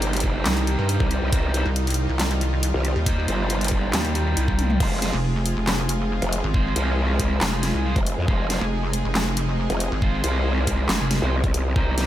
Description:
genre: heavy wobble dubstep.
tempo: 138 BPM.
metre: 4/4.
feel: half-time.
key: F minor.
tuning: A4 = 439 Hz.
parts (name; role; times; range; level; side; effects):
supersaw pad; sustained chords; 0.0-12.1 s; C3 to Ab4; -29 LUFS; equal; sidechain pumping.
distorted electric guitar; stabs; 0.0-12.1 s; G3 to C5; -29 LUFS; right 2 dB; distortion, digital delay.
growl bass; bass; 0.0-12.1 s; F1 to F2; -23 LUFS; equal; chorus, overdrive.
dubstep drum kit; drums; 0.0-12.1 s; crash cymbal, handclaps, hi-hat, snare drum, toms; -26 LUFS; equal; studio reverb.
electronic kick drum; drums; 0.2-11.8 s; none; -23 LUFS; equal; studio reverb.
pulsing pluck wobble bass; bass; 0.5-11.2 s; F1 to G2; -23 LUFS; equal; chorus, overdrive.
room: little or no reverb.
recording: none.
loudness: -20 LUFS.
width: side -12 dB against mid.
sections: 0.0-4.8 A section; 4.8-12.1 A section.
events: drop 0.0-4.8, 4.8-12.1; drum fill 4.6.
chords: 0.0 Cm; 4.8 Fm.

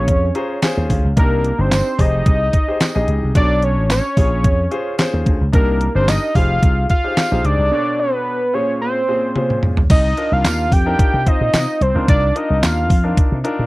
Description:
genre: early-eighties boogie funk.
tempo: 110 BPM.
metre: 4/4.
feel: straight.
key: C minor.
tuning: A4 = 440 Hz.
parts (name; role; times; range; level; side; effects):
fat analog lead; melody; 0.0-13.2 s; Bb4 to G5; -19 LUFS; equal; none.
warm grand piano; accompaniment; 0.0-13.7 s; Bb2 to Bb5; -24 LUFS; left 2 dB; none.
slap bass with an envelope filter; bass; 0.0-13.7 s; F1 to C3; -18 LUFS; equal; tube saturation.
detuned 8-bit digital drum machine; drums; 0.1-13.6 s; crash cymbal, handclaps, hi-hat, kick drum, snare drum, toms; -16 LUFS; equal; none.
tambourine; percussion; 0.6-12.8 s; none; -32 LUFS; right 8 dB; none.
room: little or no reverb.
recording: dry, close 1970s-style studio recording.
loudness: -14 LUFS.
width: side -20 dB against mid.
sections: 0.0-9.9 A section; 9.9-13.7 B section.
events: grand piano fill 0.1-1.2; break 7.7-9.9; drum fill 9.4-9.9.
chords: 0.0 Bbm9; 1.2 Cm9; 2.0 Fm9; 3.4 Bm9; 4.2 Bbm9; 5.5 Cm9; 6.4 Fm9; 7.7 Bm9; 8.5 Bbm9; 9.9 Cm11.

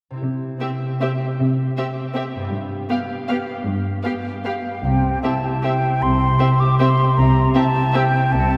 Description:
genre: classical, orchestral ballroom waltz.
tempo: 156 BPM.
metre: 3/4.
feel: uneven beats, rubato.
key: C major.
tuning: A4 = 440 Hz.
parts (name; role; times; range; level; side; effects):
concert harp; arpeggios; 0.1-8.6 s; G2 to C5; -24 LUFS; equal; none.
muted studio cello section; bass; 0.2-8.6 s; G2 to C3; -26 LUFS; equal; none.
muted studio violin section; melody; 0.6-8.0 s; E5 to F5; -34 LUFS; equal; none.
muted studio violin section; second line; 0.6-8.0 s; G4; -33 LUFS; equal; none.
muted studio viola section; accompaniment; 0.6-8.0 s; B3 to C4; -29 LUFS; equal; none.
concert flute; second line; 4.4-8.6 s; F5 to D6; -23 LUFS; equal; none.
muted studio double bass section; bass; 4.8-8.6 s; C2; -28 LUFS; equal; none.
room: wet church reverb, RT60 3.7 s.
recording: none.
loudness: -20 LUFS.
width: mono.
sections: 0.2-4.8 A section; 4.8-8.6 B section.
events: none.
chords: 0.2 C; 2.5 G7; 4.8 C.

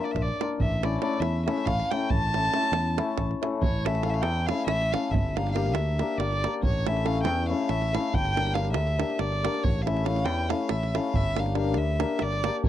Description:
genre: balkan folk, Balkan wedding band.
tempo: 279 BPM (eighths).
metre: 7/8.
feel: straight.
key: A phrygian dominant.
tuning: A4 = 440 Hz.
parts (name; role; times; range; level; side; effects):
dark violin; melody; 0.0-12.7 s; C#5 to A5; -30 LUFS; right 1 dB; none.
hammered dulcimer; accompaniment; 0.0-12.6 s; A3 to Bb4; -29 LUFS; left 6 dB; none.
fingered electric bass; bass; 0.1-12.7 s; G1 to E2; -28 LUFS; equal; none.
davul; percussion; 0.1-12.7 s; none; -29 LUFS; right 4 dB; none.
room: little or no reverb.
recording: dry, close 1970s-style studio recording.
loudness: -24 LUFS.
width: side -11 dB against mid.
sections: 0.0-3.6 A section; 3.6-12.7 B section.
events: none.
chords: 0.0 Bb; 0.6 A; 5.1 Gm; 6.6 A; 8.1 Gm; 9.7 A; 11.2 Gm.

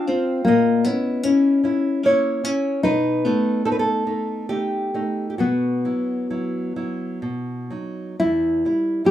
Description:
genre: romantic duo for nylon-string guitar and classical guitar.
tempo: 60-78 BPM.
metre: 3/4.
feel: rubato.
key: unclear.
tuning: A4 = 440 Hz.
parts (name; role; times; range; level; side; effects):
nylon-string guitar; melody; 0.0-9.1 s; A#3 to G4; -20 LUFS; left 2 dB; none.
nylon-string guitar; accompaniment; 0.0-9.1 s; E2 to F5; -23 LUFS; right 2 dB; none.
room: light reverb.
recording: rough home demo mix, small room ambience.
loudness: -19 LUFS.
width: side -12 dB against mid.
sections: 0.0-8.2 A section.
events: none.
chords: 0.5 A#dim; 2.9 B7; 5.4 Bsus4; 7.2 B; 8.2 Em.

